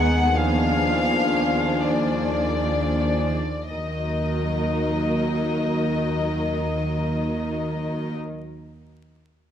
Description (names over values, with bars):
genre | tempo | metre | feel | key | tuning
classical, slow romantic movement for string orchestra | free time | none | none | Eb minor | A4 = 440 Hz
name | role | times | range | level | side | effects
warm chamber violin section | melody | 0.0-8.2 s | D5 to Gb5 | -26 LUFS | left 3 dB | none
warm chamber violin section | second line | 0.0-8.1 s | D4 to Bb4 | -29 LUFS | left 4 dB | none
warm chamber viola section | accompaniment | 0.0-8.2 s | F3 to Cb4 | -27 LUFS | right 1 dB | none
warm chamber cello section | bass | 0.0-8.2 s | Eb3 | -28 LUFS | right 1 dB | none
warm symphonic double bass section | bass | 0.0-8.2 s | Eb2 | -28 LUFS | right 1 dB | none
room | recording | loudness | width
light reverb | close, detailed microphones, vinyl crackle | -21 LUFS | side -9 dB against mid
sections
0.0-3.7 A section; 3.7-9.5 B section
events
slowing down 0.0-3.7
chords
0.4 Bb7/Eb; 3.7 Ebm